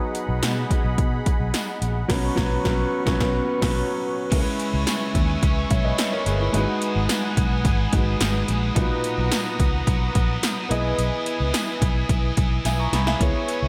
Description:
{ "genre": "1980s-style pop", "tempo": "108 BPM", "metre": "4/4", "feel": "straight", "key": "unclear", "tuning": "A4 = 439 Hz", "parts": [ { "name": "warm concert grand piano", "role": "accompaniment", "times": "0.0-13.7 s", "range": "A#2 to C#6", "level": "-29 LUFS", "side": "equal", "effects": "none" }, { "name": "warm analog pad", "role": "sustained chords", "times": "0.0-13.7 s", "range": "E4 to D#6", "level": "-33 LUFS", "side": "equal", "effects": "chorus" }, { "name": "80s electronic pad drums", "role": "drums", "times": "0.1-13.6 s", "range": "crash cymbal, hi-hat, kick drum, snare drum, tambourine", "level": "-26 LUFS", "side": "equal", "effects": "gated reverb" }, { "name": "vintage muted fingered electric bass", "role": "bass", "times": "0.3-13.7 s", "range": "G1 to B2", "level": "-27 LUFS", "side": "equal", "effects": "none" }, { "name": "tambourine", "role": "percussion", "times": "0.4-12.8 s", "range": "none", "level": "-42 LUFS", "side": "equal", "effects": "none" }, { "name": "high-gain distorted guitar", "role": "accompaniment", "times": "4.3-13.7 s", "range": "G#2 to E4", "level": "-34 LUFS", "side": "equal", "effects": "distortion, lush chorus" } ], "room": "light reverb, digital ambience", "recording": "none", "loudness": "-22 LUFS", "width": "mono", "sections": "0.0-4.3 A section; 4.3-13.7 B section", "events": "band accent 2.1-4.3; drum fill 12.7-13.2", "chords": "0.0 G#m7/B; 2.1 F#sus4/B; 4.3 C#m7; 6.5 G#m7; 8.8 Bmaj7; 10.7 Emaj7/B" }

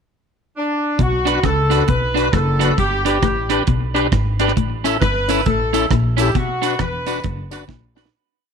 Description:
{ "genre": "ska", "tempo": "134 BPM", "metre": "4/4", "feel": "swing 62% on 8ths", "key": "B minor", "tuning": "A4 = 441 Hz", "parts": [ { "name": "warm horn section", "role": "melody", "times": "0.6-7.2 s", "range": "D4 to B4", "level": "-21 LUFS", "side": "left 1 dB", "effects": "none" }, { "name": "clean electric guitar", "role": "riff", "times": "1.0-7.8 s", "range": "E2 to C#3", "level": "-26 LUFS", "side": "left 10 dB", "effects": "slapback echo" }, { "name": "upright bass", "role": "bass", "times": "1.0-8.1 s", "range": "E1 to C#2", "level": "-21 LUFS", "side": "equal", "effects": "none" }, { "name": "deep reggae drum kit", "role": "drums", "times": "1.0-8.1 s", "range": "hi-hat, kick drum, rim click, snare drum", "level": "-21 LUFS", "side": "right 3 dB", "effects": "none" }, { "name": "electric guitar at the edge of break-up", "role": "accompaniment", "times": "1.3-8.1 s", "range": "C#4 to B4", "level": "-23 LUFS", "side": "right 14 dB", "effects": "spring reverb" }, { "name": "tonewheel organ", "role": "stabs", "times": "1.3-8.1 s", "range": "C#4 to B4", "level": "-24 LUFS", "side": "left 14 dB", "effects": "chorus vibrato, fast rotary speaker" }, { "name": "tambourine", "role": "percussion", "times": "4.9-8.1 s", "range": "none", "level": "-33 LUFS", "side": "right 16 dB", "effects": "none" } ], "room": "small room reverb", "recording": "1960s-style stereo with parts hard left and right", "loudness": "-16 LUFS", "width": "side -6 dB against mid", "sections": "0.0-1.0 pickup bar; 1.0-8.1 A section", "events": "fade-out 6.3-8.1; drum fill 7.7-8.1", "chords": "0.0 N.C.; 1.0 Bm; 2.8 G; 4.6 A; 6.3 Bm" }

